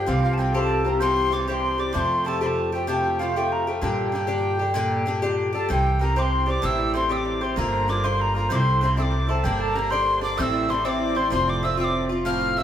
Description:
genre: celtic folk, Celtic slide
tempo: 128 BPM (dotted quarters)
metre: 12/8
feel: straight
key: unclear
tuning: A4 = 440 Hz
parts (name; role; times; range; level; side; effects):
- mellow hollow tin whistle; melody; 0.0-12.6 s; F5 to G6; -26 LUFS; left 1 dB; none
- cimbalom; second line; 0.0-12.6 s; F4 to F5; -29 LUFS; right 5 dB; none
- mellow accordion; second line; 0.0-12.6 s; F4 to F5; -34 LUFS; left 3 dB; none
- Irish bouzouki; accompaniment; 0.0-12.6 s; G2 to G4; -26 LUFS; left 2 dB; none
- upright bass; bass; 0.0-12.6 s; F1 to G2; -27 LUFS; equal; none
room: wet large studio reverb, RT60 0.9 s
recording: band playing live in one room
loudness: -20 LUFS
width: side -10 dB against mid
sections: 0.0-5.7 A section; 5.7-12.6 B section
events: none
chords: 0.1 C; 1.9 Fadd9; 3.8 Gm; 5.7 C; 6.6 Am7; 7.6 Gm7; 8.5 Cadd9; 9.4 Gm; 10.4 Am; 11.3 F

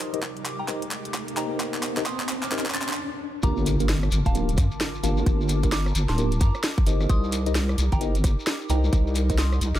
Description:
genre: UK garage, two-step garage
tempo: 131 BPM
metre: 4/4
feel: swing 62% on 16ths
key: G minor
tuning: A4 = 442 Hz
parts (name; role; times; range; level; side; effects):
- airy breathy pad; sustained chords; 0.0-9.8 s; C3 to D6; -38 LUFS; right 2 dB; chorus, sidechain pumping
- mellow tine electric piano; stabs; 0.0-9.3 s; Bb3 to Eb5; -31 LUFS; left 1 dB; medium stereo tremolo, low-pass filter
- garage drum kit; drums; 0.0-9.8 s; handclaps, hi-hat, rim click, snare drum; -29 LUFS; equal; overdrive, high-pass filter on snare, high-pass filter on hats
- riser and impact; sound effects; 0.0-5.3 s; none; -33 LUFS; equal; none
- electronic kick drum; drums; 0.2-9.4 s; none; -22 LUFS; equal; overdrive, high-pass filter on kick
- soft synth bell; melody; 0.6-9.8 s; F5 to A6; -36 LUFS; right 1 dB; chorus, phaser, tape echo
- deep soft wobble bass; bass; 3.4-9.8 s; D1 to G2; -23 LUFS; equal; chorus, sidechain pumping
- shekere; percussion; 3.4-9.8 s; none; -37 LUFS; left 4 dB; none
room: little or no reverb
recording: none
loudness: -22 LUFS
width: side -13 dB against mid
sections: 0.0-3.4 A section; 3.4-9.8 B section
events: build-up 0.0-3.4; drum fill 0.0-3.0; riser 0.0-3.0; stop 3.0-3.4; drop 3.4-9.8; impact 3.4-5.3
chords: 0.0 Cm7; 3.4 Gm7; 7.1 Cm7

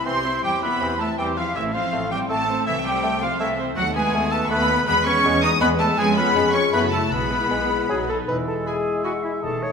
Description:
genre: cinematic, playful, whimsical film cue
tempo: 161 BPM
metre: 3/4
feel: straight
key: E major from 3.8 s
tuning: A4 = 440 Hz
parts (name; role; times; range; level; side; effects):
- rich studio violin section; melody; 0.0-9.1 s; E5 to D#6; -26 LUFS; left 2 dB; none
- clear studio violin section; second line; 0.0-9.1 s; E5 to D#6; -29 LUFS; left 1 dB; none
- silver concert flute; second line; 0.0-9.7 s; E5 to D#6; -29 LUFS; equal; none
- rich studio viola section; accompaniment; 0.0-9.1 s; G#3 to E5; -30 LUFS; right 2 dB; none
- mellow French horn section; sustained chords; 0.0-9.7 s; F#3 to E4; -30 LUFS; left 3 dB; none
- concert harp; arpeggios; 0.0-9.7 s; E#2 to C6; -30 LUFS; left 10 dB; none
- warm clarinet; second line; 0.1-9.7 s; B3 to C#5; -31 LUFS; left 2 dB; none
- warm oboe; second line; 0.1-9.7 s; E4 to E5; -27 LUFS; right 1 dB; none
- warm bassoon; accompaniment; 0.1-9.7 s; E3 to A3; -31 LUFS; right 1 dB; none
- rich studio cello section; bass; 0.1-9.7 s; E2 to D#4; -28 LUFS; right 2 dB; none
- rich studio double bass section; bass; 0.1-9.7 s; E1 to F#2; -30 LUFS; right 3 dB; none
room: wet scoring stage reverb, RT60 1.7 s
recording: minimal, uncompressed stereo recording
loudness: -19 LUFS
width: side -6 dB against mid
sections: 0.0-8.3 A section; 8.3-9.7 B section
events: none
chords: 0.4 C/E; 1.6 Am; 2.7 Am/C; 3.8 B7/D#; 4.9 E; 6.0 C#7/E#; 6.7 F#m7; 7.1 E/B; 7.9 B; 8.3 E

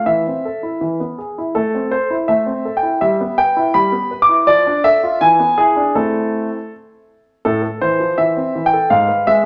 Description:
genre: classical-period piano sonatina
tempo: 82 BPM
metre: 2/4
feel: straight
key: A minor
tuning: A4 = 440 Hz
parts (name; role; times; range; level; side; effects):
- clear concert grand piano; solo; 0.0-9.5 s; G#2 to D6; -16 LUFS; equal; none
room: moderate large studio reverb, RT60 1.4 s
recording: none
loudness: -16 LUFS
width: mono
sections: 0.0-7.5 A section; 7.5-9.5 B section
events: none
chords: 0.1 Am/E; 0.8 E; 1.6 Am; 3.0 Em/G; 4.5 Dm/F; 5.2 E7; 6.0 Am; 8.9 G#m6

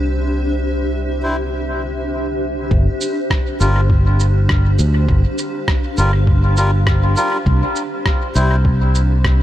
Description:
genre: ambient dub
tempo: 101 BPM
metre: 4/4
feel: swing 58% on 16ths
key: unclear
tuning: A4 = 437 Hz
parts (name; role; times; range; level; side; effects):
- granular cloud pad; sustained chords; 0.0-9.4 s; D4 to F5; -23 LUFS; left 1 dB; built-in reverb
- fingered electric bass; bass; 0.0-9.4 s; G1 to D2; -15 LUFS; equal; none
- melodica; stabs; 1.2-8.6 s; G3 to C5; -23 LUFS; left 1 dB; dub echo
- electronic kick drum; drums; 2.7-9.4 s; none; -18 LUFS; equal; overdrive
- electronic cabasa and rim click; drums; 3.0-9.4 s; none; -25 LUFS; right 1 dB; overdrive, dub echo
room: digital ambience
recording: none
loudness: -14 LUFS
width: side -13 dB against mid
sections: 0.0-2.7 A section; 2.7-9.4 B section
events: none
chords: 0.0 C; 2.7 Gm7; 7.5 C

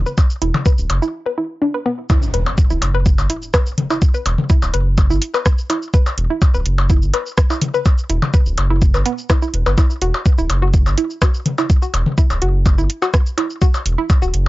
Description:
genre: minimal techno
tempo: 125 BPM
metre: 4/4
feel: straight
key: E minor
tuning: A4 = 438 Hz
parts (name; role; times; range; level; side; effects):
- round analog bass; bass; 0.0-14.5 s; D1 to G1; -17 LUFS; equal; tube saturation, sidechain pumping
- hollow square pluck; riff; 0.1-14.3 s; B3 to B4; -22 LUFS; equal; chorus, sidechain pumping, tape echo
- garage drum kit; drums; 0.1-14.4 s; hi-hat, rim click, shaker; -24 LUFS; right 1 dB; overdrive
- electronic kick drum; drums; 0.2-14.2 s; none; -13 LUFS; equal; overdrive
- electronic percussion blips and toms; percussion; 0.2-14.2 s; none; -22 LUFS; left 2 dB; overdrive
- impact; sound effects; 2.1-4.0 s; none; -27 LUFS; equal; none
room: little or no reverb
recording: dry, gritty hardware recording, transformer saturation, cassette tape, nothing above 7.5 kHz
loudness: -14 LUFS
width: side -18 dB against mid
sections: 0.0-2.1 A section; 2.1-14.5 B section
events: break 1.1-2.1; drop 2.1-14.5; impact 2.1-4.0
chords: 0.0 E7(no3); 2.1 E5

